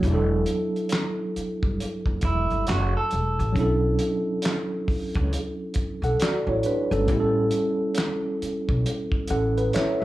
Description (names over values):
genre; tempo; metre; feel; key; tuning
R&B, neo-soul; 68 BPM; 4/4; swing 62% on 16ths; B minor; A4 = 440 Hz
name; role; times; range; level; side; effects
tine electric piano; accompaniment; 0.0-10.0 s; F#3 to F#5; -25 LUFS; right 1 dB; overdrive, fast stereo tremolo
upright bass; bass; 0.0-10.0 s; E1 to C#2; -26 LUFS; equal; none
cloth-damped thuddy drum kit; drums; 0.0-10.0 s; handclaps, hi-hat, kick drum, snare drum; -28 LUFS; equal; none
electric guitar at the edge of break-up; second line; 2.2-3.5 s; E4 to A4; -26 LUFS; right 2 dB; plate reverb
room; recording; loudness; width
light reverb; studio reverb; -22 LUFS; side -16 dB against mid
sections
0.0-10.0 A section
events
tine electric piano fill 8.9-10.0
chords
0.0 E9sus4; 3.6 Bm11; 7.1 A7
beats
| 0.03 0.91 1.79 2.68 | 3.56 4.44 5.32 6.21 | 7.09 7.97 8.85 9.73